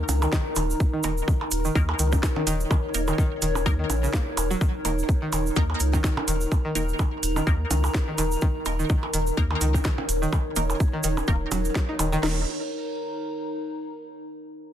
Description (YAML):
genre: minimal techno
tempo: 126 BPM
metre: 4/4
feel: swing 56% on 16ths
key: unclear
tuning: A4 = 440 Hz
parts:
  - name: round analog bass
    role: bass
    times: 0.0-12.5 s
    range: Eb1 to Eb2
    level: -26 LUFS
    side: equal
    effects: sidechain pumping
  - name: warbly tape-like pad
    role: texture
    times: 0.0-14.1 s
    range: Eb4 to Bb5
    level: -30 LUFS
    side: equal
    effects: chorus, built-in reverb, sidechain pumping
  - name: garage drum kit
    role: drums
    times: 0.1-12.1 s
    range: hi-hat, snare drum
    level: -31 LUFS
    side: right 1 dB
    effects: none
  - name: percussion blips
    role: percussion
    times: 0.1-12.1 s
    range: none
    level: -32 LUFS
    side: right 2 dB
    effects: overdrive, digital delay
  - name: tube shaker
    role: percussion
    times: 0.1-12.2 s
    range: none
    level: -35 LUFS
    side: right 5 dB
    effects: none
  - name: string-like resonator pluck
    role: riff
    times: 0.2-12.5 s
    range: Db3 to Eb4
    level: -31 LUFS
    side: equal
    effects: chorus, cassette tape, sidechain pumping, digital delay
  - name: garage drum kit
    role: drums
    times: 0.3-12.4 s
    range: crash cymbal, kick drum, snare drum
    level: -24 LUFS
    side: equal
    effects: none
  - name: filtered dub chord stab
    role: stabs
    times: 1.0-12.4 s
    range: Bb3 to Bb4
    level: -33 LUFS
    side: right 1 dB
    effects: phaser, digital delay
room: light reverb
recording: dense, heavily limited modern master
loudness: -22 LUFS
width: side -10 dB against mid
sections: 0.0-12.2 A section; 12.2-14.1 B section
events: drop 0.0-12.2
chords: 0.0 Eb5